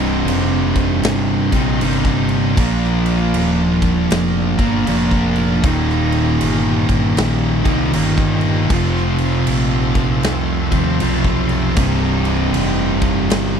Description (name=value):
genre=stoner and doom metal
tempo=78 BPM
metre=4/4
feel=swing 63% on 8ths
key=C dorian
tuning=A4 = 439 Hz
part: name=bright tonewheel organ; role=sustained chords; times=0.0-13.6 s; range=Eb4 to Bb5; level=-32 LUFS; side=equal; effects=none
part: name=heavy high-gain guitar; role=riff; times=0.0-13.6 s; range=C2 to Bb4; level=-23 LUFS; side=left 1 dB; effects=distortion
part: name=thick fuzz guitar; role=riff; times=0.0-13.6 s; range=C2 to Bb3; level=-20 LUFS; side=left 10 dB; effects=distortion
part: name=thick fuzz guitar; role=riff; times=0.0-13.6 s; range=C2 to Bb3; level=-19 LUFS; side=right 10 dB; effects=distortion
part: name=overdriven fingered electric bass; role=bass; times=0.0-13.6 s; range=C1 to Eb2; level=-21 LUFS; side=equal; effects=none
part: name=big rock drum kit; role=drums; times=0.3-13.5 s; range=crash cymbal, kick drum, snare drum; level=-23 LUFS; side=equal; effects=none
room=little or no reverb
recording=dry, close 1970s-style studio recording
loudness=-14 LUFS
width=side -7 dB against mid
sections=0.0-13.6 A section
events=none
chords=0.0 Cm; 2.6 Bb; 5.6 Eb; 8.7 F; 11.8 Cm